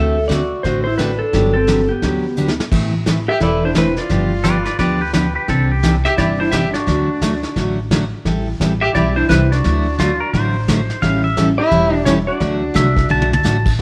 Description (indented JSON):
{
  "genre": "country, western swing",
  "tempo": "173 BPM",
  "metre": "4/4",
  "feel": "swing 62% on 8ths",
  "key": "unclear",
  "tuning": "A4 = 439 Hz",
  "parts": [
    { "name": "clean lap steel guitar", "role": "melody", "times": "0.0-13.4 s", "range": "B3 to E5", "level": "-22 LUFS", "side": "equal", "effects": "none" },
    { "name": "picked steel-string acoustic guitar", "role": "accompaniment", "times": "0.0-13.8 s", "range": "C3 to B4", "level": "-21 LUFS", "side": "equal", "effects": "none" },
    { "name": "upright bass", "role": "bass", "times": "0.0-13.8 s", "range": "E1 to D2", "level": "-23 LUFS", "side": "equal", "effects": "none" },
    { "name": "vintage brush drum kit", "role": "drums", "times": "0.3-13.8 s", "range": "brushed snare drum, crash cymbal, hi-hat, kick drum, snare drum, toms", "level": "-24 LUFS", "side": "equal", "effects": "none" },
    { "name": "dark fiddle", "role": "second line", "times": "3.3-13.4 s", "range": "C4 to G4", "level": "-25 LUFS", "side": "equal", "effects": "none" },
    { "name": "pedal steel guitar", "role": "second line", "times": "4.4-5.9, 10.0-13.7 s", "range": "C4 to A5", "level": "-24 LUFS", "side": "equal", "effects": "none" }
  ],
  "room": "light reverb, small room ambience",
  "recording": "none",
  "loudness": "-17 LUFS",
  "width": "mono",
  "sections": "0.0-2.7 A section; 2.7-13.8 B section",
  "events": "drum fill 2.4-2.7, 13.1-13.4",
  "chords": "0.0 D7; 1.3 Gmaj7; 2.7 Amadd9; 4.1 G7; 5.5 Cadd9; 6.9 D; 8.3 Am7; 9.6 Dadd9; 11.0 A7; 12.4 D"
}